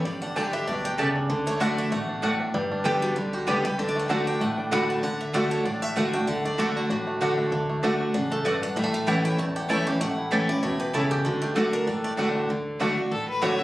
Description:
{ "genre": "bluegrass", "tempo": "193 BPM", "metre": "4/4", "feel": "swing 55% on 8ths", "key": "D major", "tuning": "A4 = 441 Hz", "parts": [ { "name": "bluegrass banjo", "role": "melody", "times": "0.0-13.5 s", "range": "D3 to G4", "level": "-31 LUFS", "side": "right 2 dB", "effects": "none" }, { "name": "picked steel-string acoustic guitar", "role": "melody", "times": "0.0-12.1 s", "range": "F#4 to B5", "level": "-32 LUFS", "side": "left 1 dB", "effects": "plate reverb" }, { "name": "picked steel-string acoustic guitar", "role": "accompaniment", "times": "0.0-13.6 s", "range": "G2 to G4", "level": "-26 LUFS", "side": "equal", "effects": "none" }, { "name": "upright bass", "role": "bass", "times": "0.1-13.6 s", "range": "E1 to D2", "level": "-39 LUFS", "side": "right 1 dB", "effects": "none" }, { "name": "mandolin", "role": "stabs", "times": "0.4-13.5 s", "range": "A3 to A5", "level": "-29 LUFS", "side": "right 2 dB", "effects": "none" }, { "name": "clear fiddle", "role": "second line", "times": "13.1-13.6 s", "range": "A4 to E5", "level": "-27 LUFS", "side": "left 2 dB", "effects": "none" } ], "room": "moderate studio reverb, RT60 0.9 s", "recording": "recorded on a phone in the room, club reverb, compression", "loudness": "-23 LUFS", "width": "side -16 dB against mid", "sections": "0.0-2.5 A section; 2.5-12.5 B section; 12.5-13.6 C section", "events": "fiddle solo 12.5-13.6", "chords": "0.1 Gsus2; 1.3 D; 2.5 G; 3.8 D; 8.8 A; 11.3 D" }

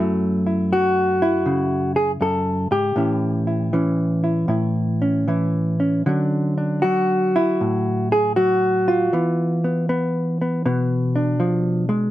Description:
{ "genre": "solo jazz", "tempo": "79 BPM", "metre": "4/4", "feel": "swing 67% on 8ths, rubato", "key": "A major", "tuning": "A4 = 444 Hz", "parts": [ { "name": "hollow-body jazz guitar", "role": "solo", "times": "0.0-12.1 s", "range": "F#2 to A4", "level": "-18 LUFS", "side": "equal", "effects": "none" } ], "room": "little or no reverb", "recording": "close, detailed microphones", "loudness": "-18 LUFS", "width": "side -14 dB against mid", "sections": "0.0-12.1 A section", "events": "none", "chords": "0.0 F#m9; 3.0 A7; 6.1 Dmaj9; 9.1 E7(no3)" }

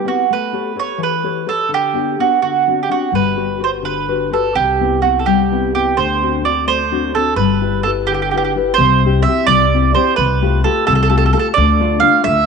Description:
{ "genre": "italian folk, Italian serenade", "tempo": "85 BPM (dotted quarters)", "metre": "6/8", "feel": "straight", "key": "G major, C major from 8.8 s", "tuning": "A4 = 440 Hz", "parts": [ { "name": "mandolin", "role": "melody", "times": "0.0-12.5 s", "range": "F#4 to F5", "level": "-15 LUFS", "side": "right 8 dB", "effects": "none" }, { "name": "nylon-string guitar", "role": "accompaniment", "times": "0.0-12.5 s", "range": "C3 to C#5", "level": "-19 LUFS", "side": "left 11 dB", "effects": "none" }, { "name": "upright bass", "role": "bass", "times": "3.1-12.5 s", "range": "G1 to D2", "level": "-19 LUFS", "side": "left 2 dB", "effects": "none" } ], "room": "moderate echo chamber reverb, RT60 2.0 s", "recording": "1960s-style stereo with parts hard left and right", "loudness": "-13 LUFS", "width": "side -5 dB against mid", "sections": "0.0-8.8 A section; 8.8-12.5 B section", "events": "none", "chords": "0.3 A7; 1.7 G/D; 2.4 D7; 3.1 Gmaj7; 4.6 Cmaj7; 6.0 D7; 7.4 G6; 8.8 C; 10.2 Fadd9/C; 11.6 Dm" }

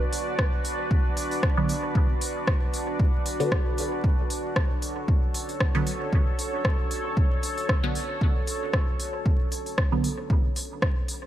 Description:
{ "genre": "dub techno", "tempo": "115 BPM", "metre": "4/4", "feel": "swing 55% on 16ths", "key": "B minor", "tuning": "A4 = 439 Hz", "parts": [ { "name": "deep dark ambient pad", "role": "sustained chords", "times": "0.0-11.3 s", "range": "D4 to D5", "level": "-31 LUFS", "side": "right 1 dB", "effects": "chorus, built-in reverb, sidechain pumping" }, { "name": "deep house drum kit", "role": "drums", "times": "0.1-11.2 s", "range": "hi-hat, rim click", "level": "-31 LUFS", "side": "left 1 dB", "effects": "dub echo" }, { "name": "electronic kick drum", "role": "drums", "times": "0.4-10.9 s", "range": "none", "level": "-24 LUFS", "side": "equal", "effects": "none" }, { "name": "filtered dub chord stab", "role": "stabs", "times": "1.6-10.1 s", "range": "D3 to B3", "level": "-31 LUFS", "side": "right 2 dB", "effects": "phaser, sidechain pumping, dub echo" } ], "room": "little or no reverb", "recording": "vinyl crackle", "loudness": "-23 LUFS", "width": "side -12 dB against mid", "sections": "0.0-11.3 A section", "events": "none", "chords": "0.0 Bm" }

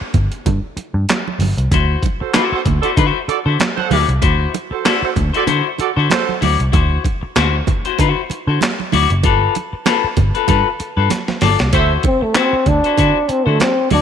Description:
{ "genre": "funk", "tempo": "96 BPM", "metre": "4/4", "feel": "swing 56% on 16ths", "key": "D mixolydian", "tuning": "A4 = 440 Hz", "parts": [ { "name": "vintage muted picked electric bass", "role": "bass", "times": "0.0-14.0 s", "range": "F#1 to D3", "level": "-16 LUFS", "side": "equal", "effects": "none" }, { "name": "breakbeat sampler-style drum kit", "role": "drums", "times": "0.1-14.0 s", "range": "handclaps, hi-hat, kick drum, snare drum", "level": "-19 LUFS", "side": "equal", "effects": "none" }, { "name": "congas", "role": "percussion", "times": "0.1-14.0 s", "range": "none", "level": "-24 LUFS", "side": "right 11 dB", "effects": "none" }, { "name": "clean electric guitar", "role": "accompaniment", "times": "1.7-14.0 s", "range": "E4 to D5", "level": "-19 LUFS", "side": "left 11 dB", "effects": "none" }, { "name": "warm horn section", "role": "second line", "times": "2.2-6.4, 11.7-11.9 s", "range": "F#4 to F#5", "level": "-22 LUFS", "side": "right 10 dB", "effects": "none" }, { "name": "breathy trombone", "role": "melody", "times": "12.1-14.0 s", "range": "A3 to D4", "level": "-15 LUFS", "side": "equal", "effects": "tape echo" } ], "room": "light reverb", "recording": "1960s-style stereo with parts hard left and right", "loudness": "-14 LUFS", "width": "side -8 dB against mid", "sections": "0.0-11.7 A section; 11.7-14.0 B section", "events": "break 0.0-1.7; drum fill 11.1-11.7; trombone solo 11.7-14.0", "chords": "0.0 N.C.; 1.7 D9; 9.2 G9; 11.7 D9" }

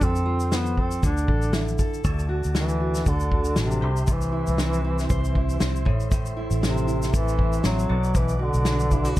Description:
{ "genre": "acoustic pop", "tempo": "118 BPM", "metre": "4/4", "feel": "swing 55% on 16ths", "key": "unclear", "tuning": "A4 = 440 Hz", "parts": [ { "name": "mellow duduk", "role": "melody", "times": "0.0-9.2 s", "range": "C3 to D4", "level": "-26 LUFS", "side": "equal", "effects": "none" }, { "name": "fingerpicked steel-string acoustic guitar", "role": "accompaniment", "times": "0.0-9.2 s", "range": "A2 to C5", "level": "-30 LUFS", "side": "right 1 dB", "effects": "none" }, { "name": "vintage muted fingered electric bass", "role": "bass", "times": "0.0-9.2 s", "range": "A1 to F2", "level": "-25 LUFS", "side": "equal", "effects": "none" }, { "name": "natural country drum kit", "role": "drums", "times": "0.0-9.2 s", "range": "kick drum, shaker, snare drum", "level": "-25 LUFS", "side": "equal", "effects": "none" }, { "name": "percussive tonewheel organ", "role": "sustained chords", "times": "2.0-9.2 s", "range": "F#4 to D6", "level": "-38 LUFS", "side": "equal", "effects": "fast rotary speaker" } ], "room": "little or no reverb", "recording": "dark, warm production", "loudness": "-21 LUFS", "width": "side -15 dB against mid", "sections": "0.0-2.0 A section; 2.0-9.2 B section", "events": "none", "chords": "0.0 F; 1.0 Dsus2; 2.0 D; 3.8 C; 5.9 Am; 7.9 Bm" }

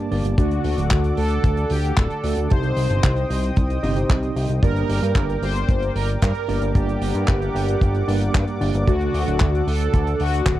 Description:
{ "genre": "italo disco", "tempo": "113 BPM", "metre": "4/4", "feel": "straight", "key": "G harmonic minor", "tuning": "A4 = 440 Hz", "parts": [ { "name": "analog synth brass", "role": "melody", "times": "0.0-10.6 s", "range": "F#4 to C5", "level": "-26 LUFS", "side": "equal", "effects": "chorus, vintage 12-bit sampler grit, tape echo" }, { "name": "warm analog pad", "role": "sustained chords", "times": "0.0-10.6 s", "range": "Bb3 to Eb6", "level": "-31 LUFS", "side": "left 1 dB", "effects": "chorus" }, { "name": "tine electric piano", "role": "stabs", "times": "0.0-10.6 s", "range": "G2 to A5", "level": "-26 LUFS", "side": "right 2 dB", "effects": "overdrive, fast stereo tremolo" }, { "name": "fat analog bass", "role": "bass", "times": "0.1-10.6 s", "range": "D1 to G2", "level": "-22 LUFS", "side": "equal", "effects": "tube saturation" }, { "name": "damped 70s drum kit", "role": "drums", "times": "0.1-10.6 s", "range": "handclaps, hi-hat", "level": "-30 LUFS", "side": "equal", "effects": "small room reverb" }, { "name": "kick drum", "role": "drums", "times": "0.4-10.6 s", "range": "none", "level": "-19 LUFS", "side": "equal", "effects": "small room reverb" } ], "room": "little or no reverb", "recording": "dry, close 1970s-style studio recording", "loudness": "-18 LUFS", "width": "side -14 dB against mid", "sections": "0.0-10.6 A section", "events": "none", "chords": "0.4 D; 2.5 Cm; 4.6 Gm; 8.9 D" }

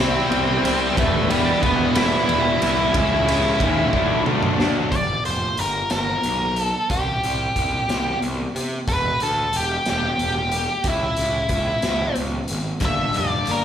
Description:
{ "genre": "quiet-loud alternative rock", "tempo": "61 BPM (dotted quarters)", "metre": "6/8", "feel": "straight", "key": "unclear", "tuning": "A4 = 440 Hz", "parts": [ { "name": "octave-fuzz lead guitar", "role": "melody", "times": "0.0-13.6 s", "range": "G3 to E5", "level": "-22 LUFS", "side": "equal", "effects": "distortion, slapback echo" }, { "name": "tonewheel organ", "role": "sustained chords", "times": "0.0-4.9 s", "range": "G4 to C6", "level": "-32 LUFS", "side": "right 1 dB", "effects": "none" }, { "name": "thick fuzz guitar", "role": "riff", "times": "0.0-4.9, 12.8-13.6 s", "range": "G2 to E4", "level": "-26 LUFS", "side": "left 11 dB", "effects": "distortion, slapback echo" }, { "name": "thick fuzz guitar", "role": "riff", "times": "0.0-4.9 s", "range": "C3 to E4", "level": "-28 LUFS", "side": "right 11 dB", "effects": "distortion, slapback echo" }, { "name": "thick fuzz guitar", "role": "riff", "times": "0.0-4.9 s", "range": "C3 to E4", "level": "-25 LUFS", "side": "right 1 dB", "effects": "distortion" }, { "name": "fuzz picked electric bass", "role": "bass", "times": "0.0-13.6 s", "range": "E1 to C3", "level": "-26 LUFS", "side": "equal", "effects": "overdrive" }, { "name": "raw garage drum kit", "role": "drums", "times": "0.3-13.6 s", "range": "hi-hat, kick drum, ride cymbal, snare drum, toms", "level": "-25 LUFS", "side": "equal", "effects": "none" }, { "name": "picked steel-string acoustic guitar", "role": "arpeggios", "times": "12.8-13.6 s", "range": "G2 to D4", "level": "-27 LUFS", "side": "right 1 dB", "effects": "digital delay" } ], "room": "light reverb", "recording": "live gig heard through the venue's PA, club reverb", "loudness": "-18 LUFS", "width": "side -9 dB against mid", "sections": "0.0-4.9 A section; 4.9-13.6 B section", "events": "drum fill 3.9-4.9", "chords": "0.0 C; 1.0 Em; 3.0 C#m; 3.9 D7; 4.9 Gm; 6.9 C5; 8.9 Em; 10.8 C#m; 12.8 Gm" }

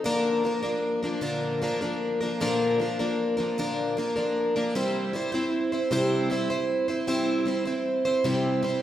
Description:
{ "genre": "rock", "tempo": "51 BPM (dotted quarters)", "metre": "6/8", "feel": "straight", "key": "unclear", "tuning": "A4 = 439 Hz", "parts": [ { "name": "picked plugged-in twelve-string acoustic guitar", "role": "solo", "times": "0.0-8.8 s", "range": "Bb2 to C5", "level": "-24 LUFS", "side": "equal", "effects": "none" } ], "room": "wet recital hall reverb, RT60 1.7 s", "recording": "recorded in a church or concert hall", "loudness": "-24 LUFS", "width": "side -11 dB against mid", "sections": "0.1-8.8 A section", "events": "none", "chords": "0.1 Bb; 4.7 C" }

